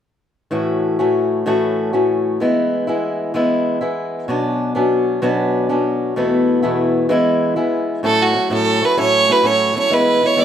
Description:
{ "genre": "celtic folk, Celtic slide", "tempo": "128 BPM (dotted quarters)", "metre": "12/8", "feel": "straight", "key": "A major", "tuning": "A4 = 440 Hz", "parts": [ { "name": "fingerpicked swing-style acoustic guitar", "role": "accompaniment", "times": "0.5-10.4 s", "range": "E2 to F#4", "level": "-16 LUFS", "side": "left 1 dB", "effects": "none" }, { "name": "clear fiddle", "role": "melody", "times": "8.1-10.4 s", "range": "F#4 to D5", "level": "-14 LUFS", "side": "right 3 dB", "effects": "plate reverb" } ], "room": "moderate studio reverb, RT60 0.6 s", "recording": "none", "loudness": "-15 LUFS", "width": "side -9 dB against mid", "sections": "0.5-8.0 A section; 8.0-10.4 B section", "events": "none", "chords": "0.5 A6; 2.4 E; 4.3 Bmadd9; 6.2 Esus4; 7.1 E; 8.0 A6; 9.9 E" }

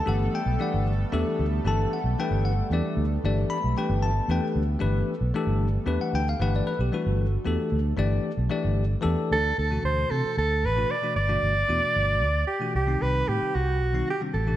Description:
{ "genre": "jazz", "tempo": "76 BPM (dotted quarters)", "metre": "6/8", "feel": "straight", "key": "G major", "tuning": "A4 = 440 Hz", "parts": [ { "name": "bell-like tine electric piano", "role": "accompaniment", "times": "0.0-14.6 s", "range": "B2 to B5", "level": "-28 LUFS", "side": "left 3 dB", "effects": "none" }, { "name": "chorused pulse-width pad", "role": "sustained chords", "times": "0.0-9.5 s", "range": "G3 to A4", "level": "-34 LUFS", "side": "right 2 dB", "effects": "none" }, { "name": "fingered electric bass", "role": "bass", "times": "0.1-14.5 s", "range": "G1 to C3", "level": "-25 LUFS", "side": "right 1 dB", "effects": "none" }, { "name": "mellow soprano saxophone", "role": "melody", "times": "9.3-14.6 s", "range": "F#4 to D5", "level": "-25 LUFS", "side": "right 2 dB", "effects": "none" } ], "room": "moderate lush hall reverb, RT60 1.5 s", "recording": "bright 1980s-style digital production", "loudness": "-23 LUFS", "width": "side -13 dB against mid", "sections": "0.0-9.6 A section; 9.6-14.6 B section", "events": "tine electric piano fill 8.8-9.6", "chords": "0.0 Gmaj9; 9.6 D69; 11.2 G6; 12.7 Cm" }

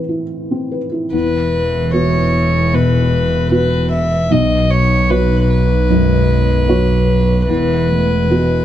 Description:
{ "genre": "neoclassical piano and strings", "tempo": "75 BPM", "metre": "4/4", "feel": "rubato", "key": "E major", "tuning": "A4 = 438 Hz", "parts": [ { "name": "felt-muted upright piano", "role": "accompaniment", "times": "0.0-8.6 s", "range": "B1 to C#5", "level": "-18 LUFS", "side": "left 1 dB", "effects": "none" }, { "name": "rich violin", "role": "melody", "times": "1.1-8.6 s", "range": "B4 to E5", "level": "-18 LUFS", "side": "left 3 dB", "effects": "none" }, { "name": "warm cello", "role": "second line", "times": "1.1-8.6 s", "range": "E3 to A3", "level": "-21 LUFS", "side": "right 6 dB", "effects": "none" }, { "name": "rich double bass", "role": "bass", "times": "1.1-8.6 s", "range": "E1 to B1", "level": "-16 LUFS", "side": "equal", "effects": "none" } ], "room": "little or no reverb", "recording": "dark, warm production", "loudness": "-12 LUFS", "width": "side -11 dB against mid", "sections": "0.0-1.1 A section; 1.1-8.6 B section", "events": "none", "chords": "0.0 Amadd9; 1.1 Esus2; 4.3 Bsus2; 7.5 Esus2" }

